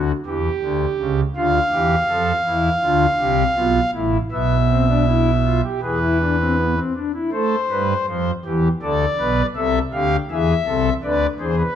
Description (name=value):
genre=classical, baroque-style 3-part fugue for pipe organ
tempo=81 BPM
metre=4/4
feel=straight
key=unclear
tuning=A4 = 439 Hz
part: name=pipe organ, foundations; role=solo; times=0.0-11.7 s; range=A1 to F5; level=-17 LUFS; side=equal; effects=none
room=moderate recital hall reverb, RT60 1.9 s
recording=close, detailed microphones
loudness=-17 LUFS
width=side -9 dB against mid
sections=0.0-7.3 A section; 7.3-11.8 B section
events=none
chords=0.0 G5/D; 1.4 Bm7b5/D; 4.3 E5/B; 5.8 E; 7.3 Am; 8.8 Bm7b5; 10.3 E7